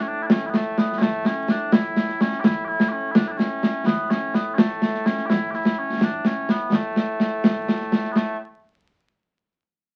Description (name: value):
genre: scottish traditional, Scottish pipe music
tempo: 84 BPM (dotted quarters)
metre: 6/8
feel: straight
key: A major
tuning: A4 = 440 Hz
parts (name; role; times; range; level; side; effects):
- mellow small bagpipes; melody; 0.0-8.4 s; A2 to G4; -28 LUFS; equal; none
- concert snare drum and concert bass drum; drums; 0.3-8.4 s; none; -22 LUFS; equal; none
room: moderate studio reverb, RT60 0.5 s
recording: very old 78 rpm record, vinyl crackle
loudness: -22 LUFS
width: mono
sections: 0.0-8.2 A section; 8.2-9.6 B section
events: none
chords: none